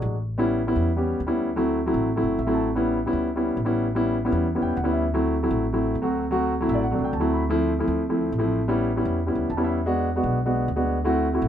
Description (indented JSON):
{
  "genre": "Afro-Cuban jazz",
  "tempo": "203 BPM",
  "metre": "4/4",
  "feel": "straight",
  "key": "unclear",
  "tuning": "A4 = 440 Hz",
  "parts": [
    { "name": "warm concert grand piano", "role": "accompaniment", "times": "0.0-11.5 s", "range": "F3 to B5", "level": "-22 LUFS", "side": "equal", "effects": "none" },
    { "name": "upright bass", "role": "bass", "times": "0.0-11.5 s", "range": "G1 to E2", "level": "-28 LUFS", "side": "equal", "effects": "none" }
  ],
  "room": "light reverb",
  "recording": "minimal, uncompressed stereo recording",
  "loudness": "-21 LUFS",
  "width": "side -9 dB against mid",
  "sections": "0.3-11.5 A section",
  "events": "grand piano fill 2.2-2.7, 4.5-5.1, 6.5-7.4, 9.4-9.8",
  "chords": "0.3 A9; 1.5 D9; 2.7 A9; 5.1 D9; 7.4 Dm7; 8.6 A9; 9.8 E9; 11.0 D9"
}